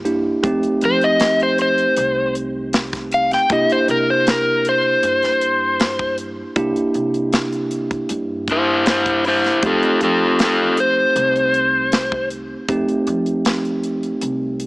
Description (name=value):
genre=straight-eighth soul blues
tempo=78 BPM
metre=4/4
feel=straight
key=unclear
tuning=A4 = 441 Hz
part: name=bell-like tine electric piano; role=accompaniment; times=0.0-14.7 s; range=A3 to G4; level=-21 LUFS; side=right 1 dB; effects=none
part: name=upright bass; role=bass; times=0.0-14.7 s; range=C2 to F3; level=-31 LUFS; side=equal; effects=none
part: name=tight funk drum kit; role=drums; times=0.1-14.7 s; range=hi-hat, kick drum, snare drum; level=-21 LUFS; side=equal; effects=none
part: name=overdriven slide guitar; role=melody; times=0.9-12.3 s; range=E4 to G5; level=-16 LUFS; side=left 1 dB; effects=none
room=light reverb, small room ambience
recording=small speaker sound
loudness=-15 LUFS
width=side -24 dB against mid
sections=0.0-14.7 A section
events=none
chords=0.4 F7; 3.5 C7; 9.6 F7